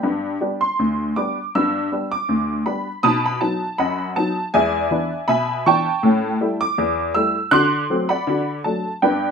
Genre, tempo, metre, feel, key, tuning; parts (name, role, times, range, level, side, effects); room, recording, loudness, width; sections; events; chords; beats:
ragtime piano; 80 BPM; 2/4; swing 55% on 16ths; G major; A4 = 440 Hz
honky-tonk upright piano; solo; 0.0-9.3 s; D2 to F#6; -18 LUFS; equal
moderate small room reverb, RT60 0.5 s; minimal, uncompressed stereo recording; -18 LUFS; side -6 dB against mid
0.0-9.3 A section
0.0 G; 3.0 B7; 4.5 E7; 6.0 A7; 7.5 D7; 8.3 D
| 0.04 0.79 | 1.54 2.29 | 3.04 3.79 | 4.54 5.29 | 6.03 6.78 | 7.53 8.28 | 9.03